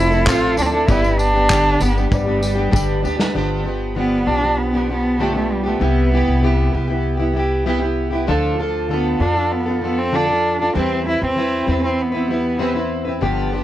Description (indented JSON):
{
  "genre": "acoustic pop",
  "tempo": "97 BPM",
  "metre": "4/4",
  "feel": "straight",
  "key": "G mixolydian",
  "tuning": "A4 = 443 Hz",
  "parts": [
    { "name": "warm cello", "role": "melody", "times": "0.0-12.9 s", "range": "G3 to F4", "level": "-20 LUFS", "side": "right 1 dB", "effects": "none" },
    { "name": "felt-muted upright piano", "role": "accompaniment", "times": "0.0-3.4 s", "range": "F3 to E5", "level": "-27 LUFS", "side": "left 3 dB", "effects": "none" },
    { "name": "fingerpicked plugged-in steel-string acoustic guitar", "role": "accompaniment", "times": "0.0-13.6 s", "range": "G2 to B4", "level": "-20 LUFS", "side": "equal", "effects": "double-tracked left and right" },
    { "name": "upright bass", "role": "bass", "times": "0.0-13.6 s", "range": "F1 to F2", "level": "-22 LUFS", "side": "equal", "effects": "none" },
    { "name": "tambourine", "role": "percussion", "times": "0.1-3.2 s", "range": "none", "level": "-36 LUFS", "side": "left 5 dB", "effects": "none" },
    { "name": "unplugged drum kit", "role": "drums", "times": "0.3-3.3 s", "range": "handclaps, kick drum, snare drum, tambourine", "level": "-20 LUFS", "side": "equal", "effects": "none" }
  ],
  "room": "light reverb",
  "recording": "worn, warbling old tape, cassette tape, warbly pitch drift",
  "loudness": "-16 LUFS",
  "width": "side -13 dB against mid",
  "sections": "0.0-3.3 A section; 3.3-13.6 B section",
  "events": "drum fill 2.7-3.3",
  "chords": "0.0 Fmaj7; 0.9 G; 3.3 G7; 5.8 Cmaj7; 8.3 Dm; 10.8 Cmaj7/E"
}